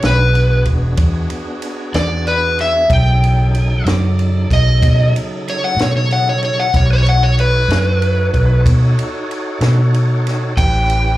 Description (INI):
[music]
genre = slow blues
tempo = 62 BPM (dotted quarters)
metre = 12/8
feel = straight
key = unclear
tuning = A4 = 440 Hz
[part]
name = overdriven slide guitar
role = melody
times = 0.0-11.2 s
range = B4 to G5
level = -17 LUFS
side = equal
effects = slapback echo
[part]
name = tonewheel organ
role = sustained chords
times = 0.0-11.2 s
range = C#3 to D5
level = -24 LUFS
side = equal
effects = slow rotary speaker, overdrive, chorus vibrato
[part]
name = vintage muted fingered electric bass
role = bass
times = 0.0-11.2 s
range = E1 to B2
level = -14 LUFS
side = equal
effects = none
[part]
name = compact cocktail drum kit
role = drums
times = 0.0-11.0 s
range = kick drum, ride cymbal, snare drum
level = -21 LUFS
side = equal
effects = none
[sound]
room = light reverb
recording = live gig heard through the venue's PA, club reverb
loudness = -12 LUFS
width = side -16 dB against mid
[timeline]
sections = 0.0-11.2 A section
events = electric slide guitar solo 0.0-11.2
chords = 0.0 E9; 2.9 B9; 10.6 A9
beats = 0.02 0.98 1.93 | 2.89 3.85 4.81 5.77 | 6.73 7.69 8.65 9.61 | 10.57